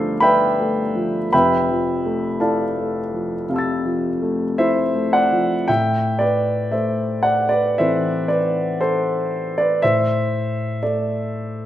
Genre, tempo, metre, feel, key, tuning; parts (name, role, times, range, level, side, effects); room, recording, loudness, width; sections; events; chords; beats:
classical, impressionist solo piano; 54-60 BPM; 4/4; rubato; A minor; A4 = 440 Hz
warm grand piano; solo; 0.0-11.7 s; F1 to A6; -17 LUFS; equal
moderate recital hall reverb, RT60 1.4 s; -17 LUFS; side -12 dB against mid
0.0-5.7 A section; 5.7-11.7 B section
0.0 G9sus4; 1.3 Fmaj7; 5.7 Amadd9; 9.8 Gsus4/A (rootless)
0.24 | 1.32 2.41 3.49 4.59 | 5.69 6.74 7.78 8.81 | 9.82 10.82